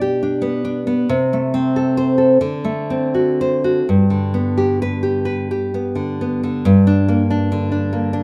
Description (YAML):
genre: romantic piece for solo classical guitar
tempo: 41-48 BPM (dotted quarters)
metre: 6/8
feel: rubato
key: G major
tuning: A4 = 439 Hz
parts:
  - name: nylon-string guitar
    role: solo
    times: 0.0-8.2 s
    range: G2 to D5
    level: -18 LUFS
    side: equal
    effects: none
room: moderate recital hall reverb, RT60 1.4 s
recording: none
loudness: -18 LUFS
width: mono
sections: 0.0-6.7 A section; 6.7-8.2 B section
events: none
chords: 0.0 G/B; 1.1 Am/C; 2.4 D7; 3.9 G; 6.7 Gm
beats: | 1.07 2.40 | 3.85 5.27 | 6.67 7.95